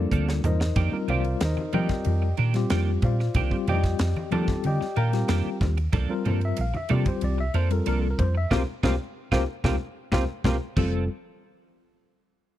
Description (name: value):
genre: electric jazz fusion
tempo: 93 BPM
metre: 4/4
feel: straight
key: F mixolydian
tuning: A4 = 438 Hz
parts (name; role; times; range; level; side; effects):
- mellow tine electric piano; accompaniment; 0.0-11.1 s; G3 to Bb5; -28 LUFS; left 3 dB; overdrive, fast stereo tremolo
- hollow-body short-scale fingered electric bass; bass; 0.0-11.1 s; F1 to F3; -25 LUFS; equal; none
- clean electric guitar; stabs; 0.1-11.0 s; Eb3 to A4; -32 LUFS; right 10 dB; analog chorus
- crisp fusion drum kit; drums; 0.1-10.9 s; crash cymbal, hi-hat, kick drum, ride cymbal, snare drum, toms; -28 LUFS; equal; none
- congas; percussion; 0.4-11.1 s; none; -32 LUFS; left 2 dB; none
room: studio ambience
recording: dry, close 1970s-style studio recording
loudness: -22 LUFS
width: side -13 dB against mid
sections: 0.0-11.1 A section; 11.1-12.6 B section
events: drum fill 0.0-0.8, 10.3-11.1; band accent 8.5-11.1; tine electric piano fill 9.2-11.1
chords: 0.0 C13sus4; 0.8 F13sus4; 5.9 C13sus4; 10.8 F; 11.1 N.C.